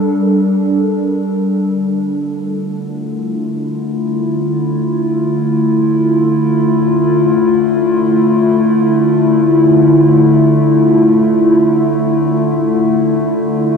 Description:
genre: ambient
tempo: free time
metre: none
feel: none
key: D minor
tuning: A4 = 440 Hz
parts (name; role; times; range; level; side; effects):
- warbly tape-like pad; solo; 0.0-13.8 s; D3 to Bb4; -11 LUFS; left 1 dB; chorus, built-in reverb, ping-pong delay
room: wet huge ambient reverb, RT60 9.1 s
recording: none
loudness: -11 LUFS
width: side -6 dB against mid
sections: 0.0-1.6 A section; 1.6-13.8 B section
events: none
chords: 0.0 Gmadd9; 1.6 Dmadd9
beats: free time

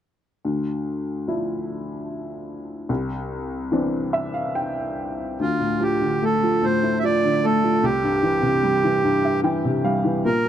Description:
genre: celtic folk, Celtic slow air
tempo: 74 BPM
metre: 3/4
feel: rubato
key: D minor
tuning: A4 = 440 Hz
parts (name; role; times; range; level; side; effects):
- clear upright piano; accompaniment; 0.4-10.5 s; C2 to G5; -22 LUFS; left 1 dB; none
- accordion; melody; 5.4-10.5 s; F4 to E5; -22 LUFS; right 3 dB; tape echo
room: little or no reverb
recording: dry, close 1970s-style studio recording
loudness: -20 LUFS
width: side -10 dB against mid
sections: 0.4-5.4 A section; 5.4-10.5 B section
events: upright piano fill 3.7-5.4, 9.0-10.2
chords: 0.4 Dmadd9; 2.9 Cadd9; 5.4 Dmadd9; 7.8 C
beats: | 0.43 1.26 2.08 | 2.89 3.72 4.55 | 5.39 6.22 7.04 | 7.84 8.64 9.45 | 10.25

